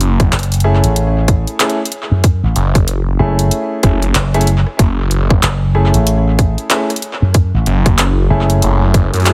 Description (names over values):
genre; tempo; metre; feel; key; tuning
glitch hop; 94 BPM; 4/4; swing 61% on 16ths; F# minor; A4 = 439 Hz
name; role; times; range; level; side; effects
phased detuned saw bass; bass; 0.0-9.3 s; F#1 to F#2; -16 LUFS; equal; phaser, overdrive
drum and bass drum kit; drums; 0.0-9.3 s; handclaps, hi-hat, rim click; -21 LUFS; equal; overdrive, tape echo
electronic kick drum; drums; 0.2-9.1 s; none; -13 LUFS; equal; overdrive
slap bass with an envelope filter; bass; 0.3-8.6 s; F#1 to F#2; -15 LUFS; equal; none
warm concert grand piano; stabs; 0.6-9.3 s; A3 to G#4; -21 LUFS; equal; vintage 12-bit sampler grit, sidechain pumping, tape echo
room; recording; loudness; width
digital ambience; echo-heavy mix; -14 LUFS; mono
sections
0.0-9.3 A section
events
none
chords
0.0 F#m9